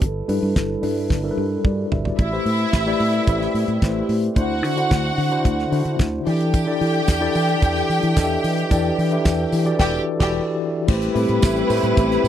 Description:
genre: disco.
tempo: 110 BPM.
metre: 4/4.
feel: straight.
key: A dorian.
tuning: A4 = 441 Hz.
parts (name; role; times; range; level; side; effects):
mellow tine electric piano; accompaniment; 0.0-12.3 s; D3 to E5; -23 LUFS; left 2 dB; medium stereo tremolo.
dark French horn section; sustained chords; 0.0-12.3 s; D3 to B4; -28 LUFS; right 1 dB; none.
fingered electric bass; bass; 0.0-12.3 s; E1 to E3; -23 LUFS; equal; none.
damped 70s drum kit; drums; 0.0-12.3 s; crash cymbal, hi-hat, kick drum, snare drum, toms; -20 LUFS; equal; none.
clear symphonic string section; second line; 2.2-12.3 s; G3 to G5; -24 LUFS; right 1 dB; none.
tambourine; percussion; 6.5-12.3 s; none; -38 LUFS; right 24 dB; none.
room: little or no reverb.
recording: dry, close 1970s-style studio recording.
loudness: -18 LUFS.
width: side -10 dB against mid.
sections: 0.0-2.2 A section; 2.2-10.9 B section; 10.9-12.3 C section.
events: drum fill 1.1-2.2; band accent 9.8-10.9.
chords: 0.0 G69; 2.2 Am9; 4.4 D9; 6.3 Em11; 10.9 Am9.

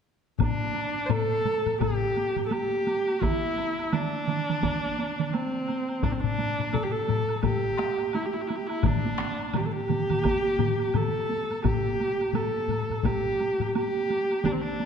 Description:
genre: japanese traditional, taiko drum ensemble.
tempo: 85 BPM.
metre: 4/4.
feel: swing 60% on 16ths.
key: D suspended pentatonic.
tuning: A4 = 440 Hz.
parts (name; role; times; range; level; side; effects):
warm viola; melody; 0.4-14.9 s; C4 to C5; -27 LUFS; right 1 dB; none.
taiko ensemble; percussion; 0.4-14.9 s; none; -34 LUFS; right 2 dB; none.
taiko ensemble; percussion; 0.4-13.7 s; none; -30 LUFS; left 7 dB; none.
taiko ensemble; percussion; 0.4-14.6 s; none; -32 LUFS; equal; none.
woodblock; percussion; 0.4-14.9 s; none; -40 LUFS; right 4 dB; none.
taiko ensemble; percussion; 3.2-14.6 s; none; -32 LUFS; right 6 dB; none.
room: wet concert hall reverb, RT60 2.1 s.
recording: dark, warm production.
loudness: -24 LUFS.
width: side -7 dB against mid.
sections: 0.4-14.9 A section.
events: none.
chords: none.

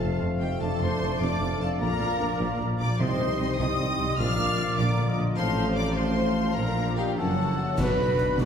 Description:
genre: cinematic, heroic adventure film score.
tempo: 100 BPM (dotted quarters).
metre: 6/8.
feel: straight.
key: unclear.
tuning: A4 = 441 Hz.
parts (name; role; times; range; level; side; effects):
rich chamber violin section; melody; 0.0-8.5 s; F5 to F6; -35 LUFS; left 4 dB; none.
mellow large flute ensemble; second line; 0.0-8.5 s; C#5 to D6; -36 LUFS; left 2 dB; none.
warm symphonic violin section; second line; 0.0-8.5 s; F5 to F6; -39 LUFS; left 1 dB; none.
rich symphonic viola section; accompaniment; 0.0-8.5 s; D3 to F5; -34 LUFS; equal; none.
mellow French horn section; sustained chords; 0.0-8.5 s; D3 to B4; -33 LUFS; left 1 dB; none.
mellow trombone section; sustained chords; 0.0-8.5 s; C3 to D4; -36 LUFS; right 3 dB; none.
concert harp; arpeggios; 0.0-8.5 s; F2 to F6; -33 LUFS; left 6 dB; none.
warm trumpet section; stabs; 0.0-8.5 s; D4 to F5; -35 LUFS; right 2 dB; none.
clear symphonic double bass section; bass; 0.0-8.5 s; F1 to C2; -32 LUFS; right 2 dB; none.
dark tuba; bass; 0.0-8.5 s; F1 to C2; -32 LUFS; right 1 dB; none.
rich symphonic cello section; bass; 0.0-8.5 s; F2 to C3; -32 LUFS; equal; none.
timpani; percussion; 3.0-3.5, 7.8-8.3 s; B2 to C3; -32 LUFS; left 1 dB; none.
clear oboe; second line; 7.0-8.5 s; F#4 to B4; -35 LUFS; right 1 dB; none.
concert snare drum, clash cymbals and concert bass drum; drums; 7.8-8.5 s; none; -32 LUFS; equal; none.
clash cymbals and concert bass drum; percussion; 7.8-8.5 s; none; -35 LUFS; equal; none.
room: wet recital hall reverb, RT60 1.7 s.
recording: heard from further back in the room.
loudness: -23 LUFS.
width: side -7 dB against mid.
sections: 0.0-7.8 A section.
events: band accent 7.8-8.2.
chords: 0.0 F; 0.6 Dm/F; 1.8 Bb; 3.0 Cm; 4.2 Bb; 5.4 F/A; 6.6 Bb; 7.2 F#7; 7.8 Bm.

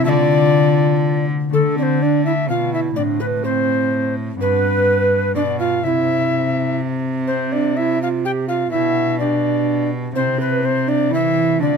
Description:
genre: classical, renaissance-style consort dance.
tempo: 125 BPM.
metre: 3/4.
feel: straight.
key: D dorian.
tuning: A4 = 440 Hz.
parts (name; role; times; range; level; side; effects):
mellow tenor recorder; melody; 0.0-11.8 s; A4 to G5; -21 LUFS; left 6 dB; none.
mellow hollow tenor recorder; second line; 0.0-11.8 s; C4 to B4; -20 LUFS; right 8 dB; none.
concert harp; accompaniment; 0.0-11.8 s; G2 to G4; -22 LUFS; left 8 dB; none.
rich cello; bass; 0.0-11.8 s; G2 to E3; -23 LUFS; right 3 dB; none.
room: light reverb.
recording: close, detailed microphones.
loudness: -16 LUFS.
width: side -6 dB against mid.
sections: 0.0-1.5 A section; 1.5-11.8 B section.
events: none.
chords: 0.1 Dm; 3.0 Am; 4.4 G; 5.8 C; 8.7 G/B; 10.2 C.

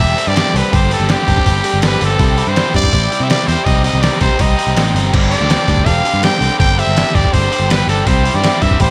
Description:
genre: indie rock.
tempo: 163 BPM.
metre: 4/4.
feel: straight.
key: unclear.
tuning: A4 = 439 Hz.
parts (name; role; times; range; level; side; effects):
growling trumpet; melody; 0.0-8.9 s; G4 to G5; -20 LUFS; equal; none.
overdriven electric guitar; riff; 0.0-8.9 s; G2 to G4; -20 LUFS; equal; spring reverb, slapback echo.
picked electric bass; bass; 0.0-8.9 s; E1 to C3; -19 LUFS; equal; none.
trip hop sampler-style drum kit; drums; 0.0-8.9 s; crash cymbal, hi-hat, kick drum, snare drum; -19 LUFS; equal; none.
room: light reverb, digital ambience.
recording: none.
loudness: -14 LUFS.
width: mono.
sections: 0.0-8.9 A section.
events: none.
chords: 0.0 Gsus4; 2.2 C; 3.7 Cm; 5.1 Gsus4; 8.1 C.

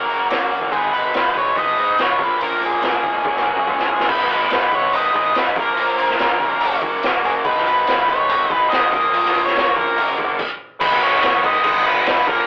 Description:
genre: indie rock.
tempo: 143 BPM.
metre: 4/4.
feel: straight.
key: G# dorian.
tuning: A4 = 440 Hz.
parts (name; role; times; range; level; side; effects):
octave-fuzz lead guitar; melody; 0.0-12.5 s; G#4 to D#5; -18 LUFS; equal; distortion.
raw garage guitar; riff; 0.0-12.5 s; A#2 to C#5; -20 LUFS; equal; overdrive.
fuzz fingered electric bass; bass; 0.0-12.4 s; E#1 to G#2; -27 LUFS; equal; overdrive.
raw garage drum kit; drums; 0.1-12.4 s; crash cymbal, hi-hat, kick drum, snare drum, toms; -21 LUFS; equal; none.
room: moderate studio reverb, RT60 0.6 s.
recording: rough rehearsal-room recording, tube saturation, telephone sound.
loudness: -15 LUFS.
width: side -35 dB against mid.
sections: 0.0-4.1 A section; 4.1-10.8 B section; 10.8-12.5 C section.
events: drum fill 3.2-4.1; stop 10.4-10.8.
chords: 0.0 F#; 0.7 G#m; 2.2 A#m7; 3.2 F#; 3.7 C#; 4.1 G#m; 5.6 A#m7; 6.6 F#; 7.5 G#m; 8.9 A#m; 10.0 F#; 10.8 G#m.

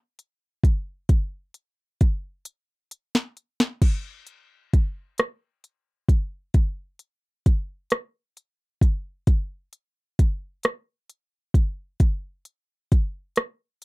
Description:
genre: R&B.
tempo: 44 BPM (dotted quarters).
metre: 6/8.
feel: straight.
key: none.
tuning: none.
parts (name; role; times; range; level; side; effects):
smooth R&B drum kit; drums; 0.2-13.8 s; crash cymbal, hi-hat, kick drum, rim click, snare drum; -19 LUFS; equal; none.
room: little or no reverb.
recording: dry, close 1970s-style studio recording.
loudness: -22 LUFS.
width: side -26 dB against mid.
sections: 0.0-3.8 A section; 3.8-13.8 B section.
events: drum fill 2.5-3.8.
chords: none.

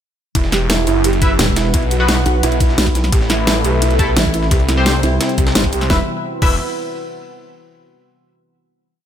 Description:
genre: dark technical drum and bass.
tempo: 173 BPM.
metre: 4/4.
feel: straight.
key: E minor.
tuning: A4 = 440 Hz.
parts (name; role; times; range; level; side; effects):
felt-muted upright piano; arpeggios; 0.3-6.6 s; E4 to G4; -23 LUFS; right 4 dB; sidechain pumping, ping-pong delay.
breakbeat sampler-style drum kit; drums; 0.3-5.9 s; ride cymbal, snare drum; -28 LUFS; right 1 dB; high-pass filter on cymbals, studio reverb, high-pass filter on snare.
dubstep drum kit; drums; 0.3-6.5 s; cabasa, crash cymbal, hi-hat, snare drum; -19 LUFS; equal; studio reverb.
electronic kick drum; drums; 0.3-6.5 s; none; -17 LUFS; equal; studio reverb.
snarling distorted saw bass; bass; 0.4-6.6 s; E1 to C2; -18 LUFS; equal; distortion, tube saturation.
warbly tape-like pad; texture; 0.9-7.2 s; E4 to B5; -24 LUFS; right 1 dB; chorus, built-in reverb, phaser, sidechain pumping.
band-passed chord stab; stabs; 1.2-6.5 s; A3 to E5; -23 LUFS; left 2 dB; chorus, vintage 12-bit sampler grit, ping-pong delay.
pulsing pluck wobble bass; bass; 1.4-5.2 s; E1 to C2; -17 LUFS; equal; chorus.
sweeping resonant pad; sustained chords; 3.1-6.1 s; C3 to B4; -24 LUFS; left 1 dB; chorus, sidechain pumping.
room: light reverb.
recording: none.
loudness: -13 LUFS.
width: side -9 dB against mid.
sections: 0.3-5.9 drop; 5.9-7.3 final chord.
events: drop 0.3-5.9.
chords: 0.3 Em; 1.7 Bsus4; 3.1 A5; 4.5 C; 5.9 E5.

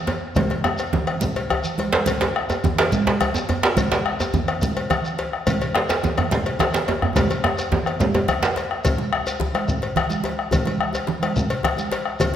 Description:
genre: west african traditional, West African drum ensemble.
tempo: 142 BPM (dotted quarters).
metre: 12/8.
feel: straight.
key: none.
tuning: none.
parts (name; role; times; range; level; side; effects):
cowbell; percussion; 0.1-12.3 s; none; -28 LUFS; left 4 dB; none.
djembe; percussion; 0.1-12.4 s; none; -30 LUFS; left 2 dB; none.
djembe; percussion; 0.1-8.6 s; none; -22 LUFS; right 3 dB; none.
bombo; percussion; 0.4-12.3 s; none; -25 LUFS; left 3 dB; none.
congas; percussion; 0.4-12.3 s; none; -26 LUFS; right 4 dB; none.
shekere; percussion; 0.4-12.3 s; none; -32 LUFS; left 1 dB; none.
room: wet recital hall reverb, RT60 1.4 s.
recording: none.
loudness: -19 LUFS.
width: side -10 dB against mid.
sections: 0.0-8.8 A section; 8.8-12.4 B section.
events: drum fill 1.5-2.1, 7.2-8.8.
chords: none.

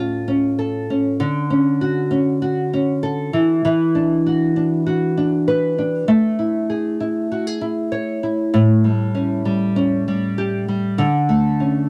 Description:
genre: indie pop.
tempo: 98 BPM.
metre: 4/4.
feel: straight.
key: A major.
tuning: A4 = 439 Hz.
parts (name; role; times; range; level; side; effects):
nylon-string guitar; solo; 0.0-11.9 s; A2 to C#5; -19 LUFS; equal; lush chorus, warbly pitch drift.
room: moderate booth ambience, RT60 0.2 s.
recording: dry, close 1970s-style studio recording.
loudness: -19 LUFS.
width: mono.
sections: 0.0-11.9 A section.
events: none.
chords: 0.0 Aaug; 1.2 Dmaj7; 3.3 Esus2; 6.1 Amaj7; 8.5 A7; 11.0 Dmaj7(no3).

